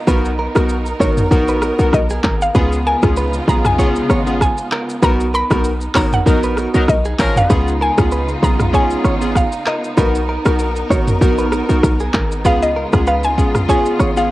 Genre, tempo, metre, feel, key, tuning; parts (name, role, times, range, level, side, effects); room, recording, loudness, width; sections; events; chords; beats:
afrobeats; 97 BPM; 4/4; swing 55% on 16ths; Db mixolydian; A4 = 440 Hz
mallet-like synth pluck; melody; 0.0-14.3 s; Eb5 to Cb6; -20 LUFS; equal; chorus
warm studio string section; sustained chords; 0.0-14.3 s; Db3 to Bb4; -25 LUFS; equal
downlifter; sound effects; 0.0-2.6 s; barely audible
warm analog keys; accompaniment; 0.1-14.3 s; Cb4 to Bb4; -19 LUFS; equal; chorus
direct-recorded clean electric guitar; riff; 0.1-14.1 s; Ab4 to Db5; -25 LUFS; right 3 dB; analog delay
short 808-style bass; bass; 0.1-14.3 s; Ab1 to Db2; -18 LUFS; equal
deep house drum kit; drums; 0.1-14.3 s; handclaps, hi-hat, kick drum, rim click, shaker, toms; -18 LUFS; equal
clear horn section; second line; 6.3-7.6 s; F3 to Bb4; -23 LUFS; left 1 dB
light reverb; home recording on cassette; -13 LUFS; side -17 dB against mid
0.0-14.3 A section
band accent 5.0-7.5
0.1 Cbmaj7; 2.6 Db7; 5.0 Cbmaj7; 7.5 Db7; 10.0 Cbmaj7; 12.4 Db7
| 0.08 0.70 1.31 1.93 | 2.55 3.17 3.79 4.41 | 5.03 5.64 6.26 6.88 | 7.50 8.12 8.74 9.36 | 9.97 10.59 11.21 11.83 | 12.45 13.07 13.69 14.30